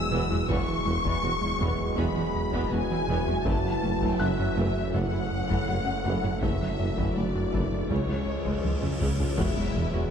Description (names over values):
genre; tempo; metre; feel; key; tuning
cinematic, hybrid orchestral and electronic film score; 81 BPM; 4/4; straight; F# minor; A4 = 439 Hz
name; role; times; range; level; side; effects
warm symphonic violin section; melody; 0.0-10.1 s; C#5 to E6; -36 LUFS; left 4 dB; none
clear symphonic violin section; second line; 0.0-10.1 s; E4 to E6; -36 LUFS; left 2 dB; none
bright trombone section; sustained chords; 0.0-10.1 s; E3 to A3; -36 LUFS; right 4 dB; none
glassy FM pad; sustained chords; 0.0-10.1 s; F#3 to D5; -36 LUFS; equal; none
mellow French horn section; sustained chords; 0.0-10.1 s; B3 to G#4; -37 LUFS; left 2 dB; none
mallet-like synth pluck; arpeggios; 0.0-10.0 s; C#3 to E4; -37 LUFS; left 1 dB; none
round analog bass; riff; 0.0-10.0 s; C#2 to F#3; -32 LUFS; right 1 dB; none
phased detuned saw bass; bass; 0.0-10.1 s; E1 to C#2; -35 LUFS; left 1 dB; phaser
felt-muted upright piano; texture; 0.0-6.4 s; G#5 to G#6; -43 LUFS; left 2 dB; none
warm symphonic viola section; accompaniment; 0.1-10.1 s; C#3 to F#4; -35 LUFS; equal; none
mellow tuba; bass; 0.1-9.8 s; E1 to C#2; -36 LUFS; right 2 dB; none
rich symphonic cello section; bass; 0.1-10.0 s; C#2 to F#2; -37 LUFS; right 2 dB; none
rich symphonic double bass section; bass; 0.1-9.8 s; E1 to C#2; -36 LUFS; right 2 dB; none
taiko ensemble; drums; 0.5-10.1 s; none; -35 LUFS; left 1 dB; none
cymbal swell and impact; sound effects; 7.8-10.1 s; none; -37 LUFS; left 2 dB; none
room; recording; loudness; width
wet concert hall reverb, RT60 2.4 s; dark, warm production; -24 LUFS; side -7 dB against mid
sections
0.0-9.4 A section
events
cymbal swell 7.8-9.4; drum fill 8.6-9.4; impact 9.4-10.1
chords
0.0 Eadd9; 3.5 F#m7; 6.4 Dadd9/F#; 7.9 C#; 9.4 Eadd9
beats
| 0.50 1.24 1.98 2.72 | 3.46 4.20 4.94 5.68 | 6.42 7.16 7.90 8.64 | 9.38